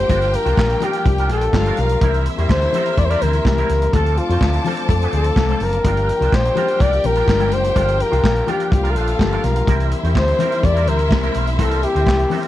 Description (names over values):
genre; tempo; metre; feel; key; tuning
disco; 125 BPM; 4/4; straight; G dorian; A4 = 440 Hz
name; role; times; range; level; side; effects
breathy flugelhorn; melody; 0.0-12.5 s; F4 to D5; -20 LUFS; left 1 dB; none
warm studio violin section; second line; 0.0-12.5 s; E4 to A5; -28 LUFS; right 1 dB; none
dark grand piano; accompaniment; 0.0-12.5 s; E3 to Bb4; -26 LUFS; left 6 dB; none
warm studio string section; sustained chords; 0.0-12.5 s; G4 to D6; -31 LUFS; left 2 dB; none
fingered electric bass with an envelope filter; bass; 0.0-12.2 s; F#1 to F2; -19 LUFS; equal; none
electric guitar with an envelope filter; accompaniment; 0.1-12.5 s; G3 to C5; -29 LUFS; right 6 dB; ensemble chorus
vintage drum kit; drums; 0.1-12.5 s; handclaps, hi-hat, kick drum, snare drum; -20 LUFS; equal; none
congas; percussion; 0.1-12.4 s; none; -28 LUFS; left 9 dB; none
room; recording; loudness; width
little or no reverb; dry, close 1970s-style studio recording; -15 LUFS; side -14 dB against mid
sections
0.0-12.5 A section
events
none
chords
0.0 Gm7; 2.0 C7; 3.9 Dm7; 5.8 Gm7; 9.7 C7